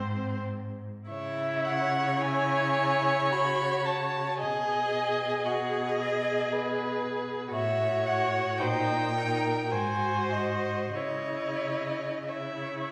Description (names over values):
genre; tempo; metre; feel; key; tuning
classical, slow romantic movement for string quartet; 45-58 BPM; 3/4; rubato; C# minor; A4 = 440 Hz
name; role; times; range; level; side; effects
warm violin; melody; 0.0-12.9 s; B#3 to B5; -34 LUFS; equal; none
warm violin; second line; 0.0-12.9 s; F#4 to E5; -34 LUFS; equal; none
rich viola; accompaniment; 0.0-12.9 s; B#3 to G#4; -36 LUFS; equal; none
rich cello; bass; 0.0-12.9 s; G#2 to C#3; -37 LUFS; equal; none
room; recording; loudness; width
wet recital hall reverb, RT60 1.3 s; heard from further back in the room; -29 LUFS; mono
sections
0.0-1.1 A section; 1.1-12.9 B section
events
none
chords
0.0 G#; 1.1 C#m; 4.4 G#m/B; 7.5 F#m/A; 8.6 D#/A#; 9.7 G#7; 10.9 C#m